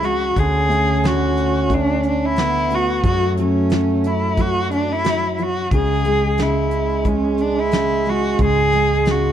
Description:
acoustic folk-pop ballad; 90 BPM; 4/4; straight; F# minor; A4 = 440 Hz
warm cello; melody; 0.0-9.3 s; C#4 to G#4; -20 LUFS; equal
mellow French horn; second line; 0.0-9.3 s; G#3 to C#4; -23 LUFS; right 5 dB
warm upright piano; accompaniment; 0.0-9.3 s; G#2 to A3; -25 LUFS; left 2 dB
mellow fretless electric bass; bass; 0.0-9.3 s; C#2 to F#2; -22 LUFS; left 1 dB
soft brush drum kit; drums; 0.0-9.2 s; hi-hat, kick drum, snare drum; -23 LUFS; equal
light reverb; dark, warm production; -16 LUFS; side -10 dB against mid
0.0-9.3 A section
0.4 Bm7/D; 3.0 F#m; 5.7 C#m

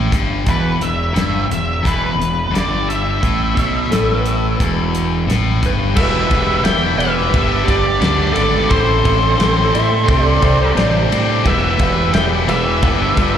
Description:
classic rock; 87 BPM; 4/4; straight; E minor; A4 = 441 Hz
overdriven electric guitar; riff; 0.0-13.4 s; E2 to E4; -21 LUFS; left 11 dB; slapback echo
sludgy distorted guitar; riff; 0.0-13.4 s; E2 to A4; -22 LUFS; right 8 dB; overdrive
fuzz fingered electric bass; bass; 0.0-13.4 s; E1 to A2; -19 LUFS; equal; overdrive
damped 70s drum kit; drums; 0.1-13.3 s; crash cymbal, hi-hat, kick drum, ride cymbal, snare drum; -20 LUFS; equal
octave-fuzz lead guitar; melody; 0.5-13.4 s; B4 to G5; -20 LUFS; equal; distortion
electric slide guitar; second line; 3.9-11.3 s; A4 to E5; -23 LUFS; equal; slapback echo
fuzz lead guitar; second line; 6.0-13.4 s; G4 to E5; -23 LUFS; right 4 dB; distortion, slapback echo
tonewheel organ; sustained chords; 6.0-13.4 s; B3 to C5; -29 LUFS; right 1 dB
light reverb, studio reverb; live gig heard through the venue's PA, recital hall reverb; -13 LUFS; side -9 dB against mid
0.0-6.0 A section; 6.0-13.4 B section
0.0 Em; 7.3 G; 8.7 Am; 10.1 Csus2; 11.5 Em; 12.8 G

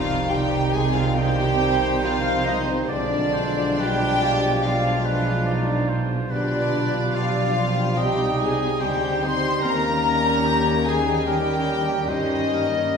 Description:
classical; 63-74 BPM; 4/4; rubato; C minor; A4 = 439 Hz
warm studio violin section; melody; 0.0-13.0 s; C5 to C6; -27 LUFS; left 4 dB
clear clarinet; second line; 0.0-13.0 s; Db4 to F4; -32 LUFS; left 1 dB
large flute ensemble; second line; 0.0-13.0 s; C5 to C6; -30 LUFS; right 2 dB
warm studio violin section; second line; 0.0-13.0 s; C4 to C5; -30 LUFS; left 3 dB
dark bassoon; accompaniment; 0.0-13.0 s; G3 to G#3; -32 LUFS; right 2 dB
warm studio viola section; accompaniment; 0.0-13.0 s; C4 to G4; -31 LUFS; right 2 dB
dark French horn section; sustained chords; 0.0-13.0 s; C3 to C4; -30 LUFS; left 2 dB
warm trombone section; sustained chords; 0.0-12.8 s; Eb3 to F4; -32 LUFS; right 1 dB
concert harp; arpeggios; 0.0-13.0 s; B2 to G#5; -33 LUFS; left 4 dB
dark studio cello section; bass; 0.0-13.0 s; G2 to Eb3; -29 LUFS; right 3 dB
warm studio double bass section; bass; 0.0-13.0 s; G1 to Eb2; -28 LUFS; right 2 dB
warm oboe; second line; 1.2-13.0 s; G4 to Eb5; -30 LUFS; right 3 dB
wet recital hall reverb, RT60 1.8 s; recorded in a church or concert hall; -19 LUFS; side -6 dB against mid
0.0-13.0 A section
0.0 Cm; 2.9 Bdim7; 6.3 G7/B; 8.0 Cm; 9.6 Eb7

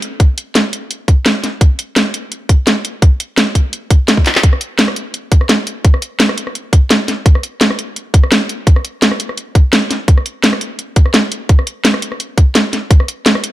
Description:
drum and bass; 170 BPM; 4/4; straight
garage drum kit; drums; 0.0-13.5 s; handclaps, hi-hat, rim click, snare drum; -13 LUFS; equal
electronic kick drum; drums; 0.2-13.0 s; -8 LUFS; equal
light reverb; -11 LUFS; side -15 dB against mid
0.0-13.5 A section
drum fill 4.3

